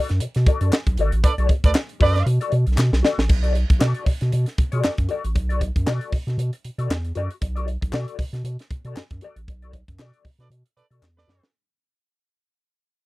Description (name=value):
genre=funk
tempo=116 BPM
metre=4/4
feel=swing 56% on 16ths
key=B minor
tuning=A4 = 445 Hz
part: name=mellow electric guitar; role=accompaniment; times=0.0-11.5 s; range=F#4 to D5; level=-27 LUFS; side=left 5 dB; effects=wah, lush chorus
part: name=round analog bass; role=bass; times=0.1-11.4 s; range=G#1 to B2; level=-22 LUFS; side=equal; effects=none
part: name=crisp fusion drum kit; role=drums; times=0.1-11.5 s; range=crash cymbal, hi-hat, kick drum, snare drum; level=-21 LUFS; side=equal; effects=none
part: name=group handclap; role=percussion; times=0.7-11.2 s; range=none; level=-30 LUFS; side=left 4 dB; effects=none
part: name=warm horn section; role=second line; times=1.2-2.2, 10.4-11.5 s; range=A4 to D5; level=-22 LUFS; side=right 4 dB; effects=none
room=little or no reverb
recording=dry, close 1970s-style studio recording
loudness=-19 LUFS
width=side -19 dB against mid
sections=0.0-3.3 A section; 3.3-11.5 B section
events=band accent 1.2-3.3, 9.5-11.5; drum fill 2.8-3.3, 11.0-11.5; fade-out 3.3-11.5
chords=0.0 Bm7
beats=0.21 0.72 | 1.24 1.75 2.27 2.78 | 3.29 3.81 4.32 4.84 | 5.35 5.87 6.38 6.90 | 7.42 7.93 8.45 8.96 | 9.48 9.99 10.51 11.03